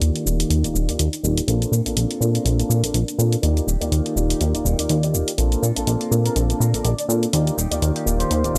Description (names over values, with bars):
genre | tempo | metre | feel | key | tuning
filtered disco house | 123 BPM | 4/4 | swing 57% on 16ths | unclear | A4 = 440 Hz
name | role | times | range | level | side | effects
bright concert grand piano | accompaniment | 0.0-8.6 s | Eb3 to D5 | -28 LUFS | equal | phaser, low-pass filter
string machine, full ensemble | sustained chords | 0.0-8.6 s | Eb3 to A5 | -35 LUFS | equal | none
plucky analog bass | bass | 0.0-8.6 s | Eb1 to Bb2 | -22 LUFS | equal | low-pass filter
electronic hi-hat and shaker | drums | 0.0-8.6 s | none | -29 LUFS | equal | overdrive, small room ambience
electric guitar with an envelope filter | riff | 0.1-8.6 s | Bb3 to Bb4 | -42 LUFS | equal | none
clear trumpet section | melody | 6.3-8.5 s | Bb4 to D5 | -31 LUFS | equal | low-pass filter
room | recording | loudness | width
little or no reverb | dry, gritty hardware recording | -21 LUFS | mono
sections
0.0-8.6 A section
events
filter sweep 0.0-8.6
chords
0.0 Ebmaj7; 1.5 Bbmaj7; 3.4 Ebmaj7; 5.4 Bbmaj7; 7.3 Ebmaj7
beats
0.02 0.50 0.99 | 1.48 1.97 2.46 2.94 | 3.43 3.92 4.41 4.89 | 5.38 5.87 6.36 6.84 | 7.33 7.82 8.31